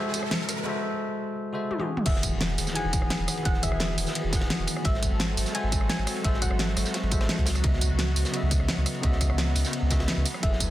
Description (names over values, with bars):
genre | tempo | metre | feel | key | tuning
liquid drum and bass | 172 BPM | 4/4 | straight | E major | A4 = 436 Hz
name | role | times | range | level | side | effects
bell-like tine electric piano | accompaniment | 0.0-10.7 s | C#3 to F#5 | -31 LUFS | left 1 dB | dub echo
lush unison pad | sustained chords | 0.0-10.7 s | F#3 to A5 | -35 LUFS | right 1 dB | chorus, phaser, sidechain pumping
riser and impact | sound effects | 0.0-3.5 s | none | -36 LUFS | equal | none
pop drum kit | drums | 0.1-10.7 s | crash cymbal, hi-hat, rim click, snare drum, tambourine, toms | -30 LUFS | equal | none
soft round pluck | melody | 2.1-7.4, 10.4-10.7 s | E5 to G#5 | -35 LUFS | left 1 dB | chorus, dub echo
warm sub bass | bass | 2.1-10.7 s | E1 to C#2 | -28 LUFS | equal | none
crunchy breakbeat drum kit | drums | 2.1-10.7 s | ride cymbal, snare drum | -37 LUFS | equal | high-pass filter on cymbals, high-pass filter on snare, high-pass filter on room
electronic kick drum | drums | 2.1-10.7 s | none | -26 LUFS | equal | none
room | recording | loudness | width
light reverb | dense, heavily limited modern master | -24 LUFS | side -14 dB against mid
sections
0.0-2.1 A section; 2.1-10.7 B section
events
build-up 0.0-2.1; riser 0.0-0.7; drum fill 1.7-2.1; drop 2.1-10.7; impact 2.1-3.5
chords
0.0 G#7b9b13; 1.9 Emaj9; 4.8 G#7b9b13; 7.5 C#m11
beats
0.32 | 0.66 1.01 1.36 1.71 | 2.06 2.41 2.76 3.11 | 3.46 3.80 4.15 4.50 | 4.85 5.20 5.55 5.90 | 6.25 6.59 6.94 7.29 | 7.64 7.99 8.34 8.69 | 9.04 9.38 9.73 10.08 | 10.43